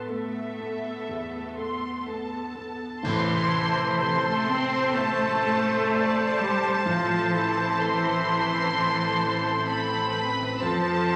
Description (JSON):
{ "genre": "cinematic, emotional film score for orchestra", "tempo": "60-65 BPM", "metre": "4/4", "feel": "rubato", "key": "A minor", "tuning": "A4 = 442 Hz", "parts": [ { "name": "clear clarinet", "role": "second line", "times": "0.0-11.2 s", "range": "E4 to C5", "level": "-37 LUFS", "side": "equal", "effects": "none" }, { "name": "clear studio viola section", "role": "accompaniment", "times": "0.0-11.2 s", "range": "B3 to C5", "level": "-39 LUFS", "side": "equal", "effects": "none" }, { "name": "felt-muted upright piano", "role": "accompaniment", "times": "0.0-11.2 s", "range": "E2 to A4", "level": "-39 LUFS", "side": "equal", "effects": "none" }, { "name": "concert harp", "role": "arpeggios", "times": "0.0-11.2 s", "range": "A2 to A4", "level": "-41 LUFS", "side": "equal", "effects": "none" }, { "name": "rich studio cello section", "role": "bass", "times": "0.0-11.2 s", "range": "E3 to C4", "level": "-31 LUFS", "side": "equal", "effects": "none" }, { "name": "rich studio violin section", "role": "second line", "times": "0.1-11.2 s", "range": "A4 to C6", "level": "-38 LUFS", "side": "equal", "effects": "none" }, { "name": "clear studio violin section", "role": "melody", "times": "3.0-11.2 s", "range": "A5 to C6", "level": "-31 LUFS", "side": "equal", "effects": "none" }, { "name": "warm oboe", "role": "second line", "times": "3.0-11.2 s", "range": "C5", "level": "-32 LUFS", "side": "equal", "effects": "none" }, { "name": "warm French horn section", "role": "sustained chords", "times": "3.0-11.2 s", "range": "C4 to C5", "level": "-37 LUFS", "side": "equal", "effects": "none" }, { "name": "clash cymbals and concert bass drum", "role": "percussion", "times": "3.0-4.9 s", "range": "none", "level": "-43 LUFS", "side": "equal", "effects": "none" }, { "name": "timpani", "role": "percussion", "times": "3.0-4.4 s", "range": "A2", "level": "-40 LUFS", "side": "equal", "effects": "none" }, { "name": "large flute ensemble", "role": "second line", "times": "3.1-11.2 s", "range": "A5", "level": "-34 LUFS", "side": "equal", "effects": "none" }, { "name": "rich studio double bass section", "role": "bass", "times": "3.1-11.2 s", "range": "A1 to F2", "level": "-40 LUFS", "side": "equal", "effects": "none" } ], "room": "wet scoring stage reverb, RT60 1.6 s", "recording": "none", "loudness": "-25 LUFS", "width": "mono", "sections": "0.0-3.0 A section; 3.0-11.2 B section", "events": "band accent 3.0-4.0", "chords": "0.0 Asus2; 3.0 Am; 10.6 F" }